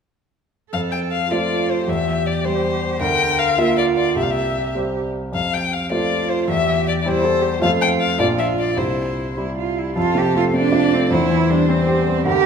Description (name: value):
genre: quick classical-period movement for piano trio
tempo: 104 BPM (dotted quarters)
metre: 6/8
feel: straight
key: F major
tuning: A4 = 440 Hz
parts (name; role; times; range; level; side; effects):
- rich violin; melody; 0.7-12.5 s; A4 to G5; -22 LUFS; left 6 dB; none
- rich cello; second line; 0.7-12.5 s; C4 to Bb4; -22 LUFS; right 9 dB; none
- clear grand piano; accompaniment; 0.7-12.5 s; Bb1 to D5; -20 LUFS; left 1 dB; none
room: wet recital hall reverb, RT60 1.7 s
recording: recorded in a church or concert hall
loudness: -17 LUFS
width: side -6 dB against mid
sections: 0.7-10.0 A section; 10.0-12.5 A section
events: none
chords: 0.7 F; 1.9 C/E; 3.0 Bb/D; 4.2 C; 5.3 F; 6.5 C/E; 7.6 F; 8.2 Bb; 8.8 C; 10.0 F; 11.1 C/E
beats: | 0.72 1.29 | 1.87 2.44 | 3.01 3.58 | 4.16 4.74 | 5.33 5.91 | 6.48 7.05 | 7.62 8.19 | 8.77 9.37 | 9.96 10.54 | 11.12 11.69 | 12.26